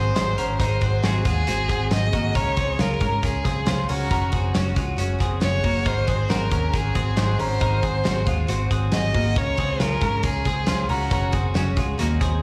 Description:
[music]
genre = jangly indie pop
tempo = 137 BPM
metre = 4/4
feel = straight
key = Ab mixolydian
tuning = A4 = 440 Hz
[part]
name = rich violin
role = melody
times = 0.0-11.5 s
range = Gb4 to Eb5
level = -30 LUFS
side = equal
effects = none
[part]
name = picked twelve-string acoustic guitar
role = accompaniment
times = 0.0-12.4 s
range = Ab2 to Ab4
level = -35 LUFS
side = equal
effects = slapback echo
[part]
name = twelve-string electric guitar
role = arpeggios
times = 0.0-12.4 s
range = Ab3 to C5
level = -30 LUFS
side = equal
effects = slapback echo, digital delay
[part]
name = vintage muted picked electric bass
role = bass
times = 0.0-12.4 s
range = Gb1 to Ab2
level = -26 LUFS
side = equal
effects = none
[part]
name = loose indie drum kit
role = drums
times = 0.2-12.3 s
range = hi-hat, kick drum, snare drum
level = -28 LUFS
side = equal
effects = none
[sound]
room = light reverb, studio reverb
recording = live gig heard through the venue's PA, club reverb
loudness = -22 LUFS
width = mono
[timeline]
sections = 0.0-12.4 A section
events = none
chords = 0.0 Ab7; 2.4 Db6; 4.1 Gbsus2; 5.9 Ab7; 9.4 Db6; 11.1 Gbsus2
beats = 0.16 | 0.60 1.04 1.48 1.92 | 2.35 2.79 3.23 3.67 | 4.11 4.55 4.98 5.42 | 5.86 6.30 6.74 7.17 | 7.61 8.05 8.48 8.92 | 9.36 9.80 10.24 10.68 | 11.11 11.55 11.99

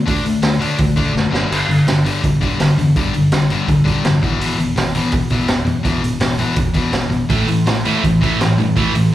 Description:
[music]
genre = punk rock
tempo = 166 BPM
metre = 4/4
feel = straight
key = unclear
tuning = A4 = 438 Hz
[part]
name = cranked stack guitar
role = riff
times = 0.0-9.1 s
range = E2 to D4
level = -16 LUFS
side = left 2 dB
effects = overdrive, slapback echo
[part]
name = picked electric bass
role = bass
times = 0.1-9.1 s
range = F#1 to G2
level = -24 LUFS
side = right 2 dB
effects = none
[part]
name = raw garage drum kit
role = drums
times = 0.1-9.0 s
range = crash cymbal, hi-hat, kick drum, snare drum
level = -20 LUFS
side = right 2 dB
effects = none
[part]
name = sludgy distorted guitar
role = riff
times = 7.3-9.1 s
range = A2 to A3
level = -19 LUFS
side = right 9 dB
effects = overdrive, slapback echo
[sound]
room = little or no reverb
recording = live gig heard through the venue's PA, club reverb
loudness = -14 LUFS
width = side -13 dB against mid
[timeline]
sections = 0.0-9.1 A section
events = drum fill 1.1-1.5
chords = 0.0 D5; 1.3 G5; 4.2 E/G#; 7.3 A5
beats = | 0.06 0.43 0.79 1.15 | 1.51 1.87 2.23 2.60 | 2.96 3.32 3.68 4.04 | 4.41 4.77 5.13 5.49 | 5.85 6.22 6.58 6.94 | 7.30 7.67 8.03 8.39 | 8.76 9.12

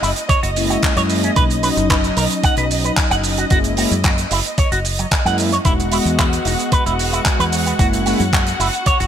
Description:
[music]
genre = nu-disco, nu disco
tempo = 112 BPM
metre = 4/4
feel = straight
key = F# mixolydian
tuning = A4 = 441 Hz
[part]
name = dark studio violin section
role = sustained chords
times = 0.0-9.1 s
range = F#4 to F#5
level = -25 LUFS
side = left 1 dB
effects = sidechain pumping
[part]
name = electric guitar with an envelope filter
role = riff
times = 0.0-9.1 s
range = F#3 to F#5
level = -22 LUFS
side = right 3 dB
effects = wide subtle chorus, ping-pong delay
[part]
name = fingered electric bass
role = bass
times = 0.0-9.1 s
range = E1 to F#2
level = -22 LUFS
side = equal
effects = none
[part]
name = damped 70s drum kit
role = drums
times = 0.0-9.1 s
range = handclaps, hi-hat, shaker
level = -22 LUFS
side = right 2 dB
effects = gated reverb
[part]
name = electronic kick drum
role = drums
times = 0.3-9.0 s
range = none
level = -17 LUFS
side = equal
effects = none
[part]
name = mellow synth brass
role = accompaniment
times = 0.6-8.2 s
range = F#3 to D#5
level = -22 LUFS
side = left 1 dB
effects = chorus, sidechain pumping, ping-pong delay
[sound]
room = light reverb, small room ambience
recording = bright 1980s-style digital production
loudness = -14 LUFS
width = side -9 dB against mid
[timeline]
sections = 0.0-9.1 A section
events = none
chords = 0.0 F#7; 1.4 Bmaj7; 3.5 F#7; 5.7 Emaj7; 7.8 F#7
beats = 0.29 0.83 | 1.36 1.90 2.44 2.97 | 3.51 4.04 4.58 5.12 | 5.65 6.19 6.72 7.26 | 7.79 8.33 8.87

